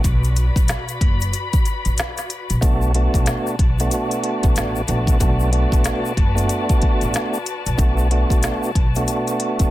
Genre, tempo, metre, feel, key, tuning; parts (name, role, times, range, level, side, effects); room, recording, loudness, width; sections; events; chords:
hip hop, boom-bap hip-hop; 93 BPM; 4/4; swing 61% on 16ths; B minor; A4 = 441 Hz
tonewheel organ; accompaniment; 0.0-9.7 s; A3 to F#4; -23 LUFS; right 2 dB; overdrive, fast rotary speaker, cassette tape, high-pass filter, low-pass filter
dark studio string section; sustained chords; 0.0-9.7 s; F#4 to B5; -29 LUFS; left 5 dB; high-pass filter, low-pass filter
upright bass; bass; 0.0-9.7 s; F#1 to B1; -21 LUFS; equal
organic electronic drum kit; drums; 0.0-9.7 s; hi-hat, kick drum, rim click, snare drum; -19 LUFS; equal
egg shaker; percussion; 0.0-9.7 s; -36 LUFS; left 5 dB
small room ambience; dense, heavily limited modern master; -16 LUFS; side -15 dB against mid
0.0-9.7 A section
break 0.0-2.6
0.0 Bm7